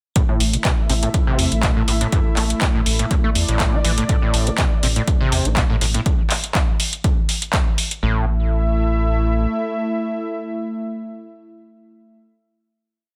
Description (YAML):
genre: acid house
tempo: 122 BPM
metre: 4/4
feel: swing 53% on 16ths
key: unclear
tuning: A4 = 445 Hz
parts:
  - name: warm analog pad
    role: sustained chords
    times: 0.2-12.2 s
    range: A3 to E5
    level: -28 LUFS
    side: equal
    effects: chorus, sidechain pumping
  - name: overdriven acid bass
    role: riff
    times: 0.2-8.3 s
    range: G2 to A3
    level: -26 LUFS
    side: equal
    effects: distortion, tube saturation, analog chorus, tape echo
  - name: electro analog drum machine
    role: drums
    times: 0.2-8.0 s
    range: handclaps, hi-hat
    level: -25 LUFS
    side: equal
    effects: none
  - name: electronic kick drum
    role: drums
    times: 0.2-7.6 s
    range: none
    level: -22 LUFS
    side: equal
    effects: none
  - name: round analog bass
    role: bass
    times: 0.4-9.5 s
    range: A1 to E2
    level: -22 LUFS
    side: equal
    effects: sidechain pumping
room: moderate studio reverb, RT60 0.6 s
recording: dense, heavily limited modern master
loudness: -19 LUFS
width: mono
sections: 0.2-8.0 groove; 8.0-12.0 final chord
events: filter sweep on acid bass 0.2-6.1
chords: 0.2 A5